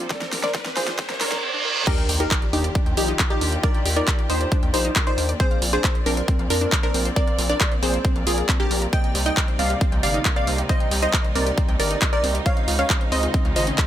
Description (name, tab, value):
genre	uplifting trance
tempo	136 BPM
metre	4/4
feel	straight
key	Eb major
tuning	A4 = 440 Hz
part	dark studio string section	sustained chords	0.0-13.9 s	C3 to D5	-31 LUFS	right 1 dB	sidechain pumping
part	wide unison pluck	arpeggios	0.0-13.8 s	C4 to G5	-31 LUFS	left 1 dB	sidechain pumping, dub echo
part	gritty driven synth bass	bass	0.0-13.7 s	G1 to F2	-25 LUFS	equal	sidechain pumping
part	big-room dance drum kit	drums	0.0-13.9 s	crash cymbal, handclaps, hi-hat, snare drum	-26 LUFS	equal	overdrive
part	riser, reverse cymbal and sub drop	sound effects	0.0-3.6 s	none	-27 LUFS	right 2 dB	none
part	wide unison pluck	melody	0.1-13.8 s	Bb3 to G5	-26 LUFS	equal	sidechain pumping, dub echo
part	electronic kick drum	drums	0.1-13.9 s	none	-21 LUFS	equal	overdrive
part	plucky unison lead	second line	1.9-13.8 s	G4 to G5	-31 LUFS	equal	sidechain pumping, dub echo
room	little or no reverb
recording	high-pass filter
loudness	-19 LUFS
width	side -11 dB against mid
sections	0.0-1.9 A section; 1.9-13.9 B section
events	build-up 0.0-1.9; drum fill 0.0-1.4; riser 0.0-1.9; filter sweep on synth arpeggio sound 0.0-1.9; reverse cymbal 1.0-1.9; drop 1.9-13.9; impact 1.9-3.6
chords	0.0 Bbadd9; 1.9 Ebmaj7; 5.4 Bbadd9; 8.9 Cm7; 12.5 Dbmaj7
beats	| 0.10 0.55 0.99 1.43 | 1.87 2.31 2.75 3.19 | 3.63 4.08 4.52 4.96 | 5.40 5.84 6.28 6.72 | 7.16 7.61 8.05 8.49 | 8.93 9.37 9.81 10.25 | 10.69 11.13 11.58 12.02 | 12.46 12.90 13.34 13.78